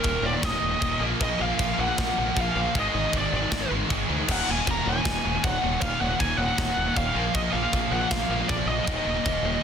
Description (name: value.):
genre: heavy metal.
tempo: 156 BPM.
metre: 4/4.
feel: straight.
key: Eb minor.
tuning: A4 = 440 Hz.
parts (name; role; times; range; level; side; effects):
high-gain lead guitar; melody; 0.0-9.6 s; Bb4 to Bb5; -28 LUFS; equal; distortion, digital delay.
high-gain distorted guitar; riff; 0.0-9.6 s; Eb2 to Bb3; -30 LUFS; equal; distortion.
scooped high-gain guitar; riff; 0.0-9.6 s; Eb2 to Bb3; -33 LUFS; right 12 dB; distortion.
tight distorted guitar; riff; 0.0-9.6 s; Eb2 to Bb3; -33 LUFS; left 12 dB; distortion.
growling fingered electric bass; bass; 0.0-9.6 s; Eb1 to D2; -31 LUFS; equal; overdrive.
tight metal drum kit; drums; 0.0-9.3 s; china cymbal, crash cymbal, kick drum, snare drum; -29 LUFS; right 1 dB; soft clipping on kick.
room: small room ambience.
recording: dense, heavily limited modern master.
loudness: -22 LUFS.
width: side -8 dB against mid.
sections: 0.0-9.6 A section.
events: half time 0.0-9.6.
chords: 0.0 Eb5; 1.0 Bb5; 2.7 Ab5; 4.3 Ebm; 7.2 Bb5; 8.9 Eb5.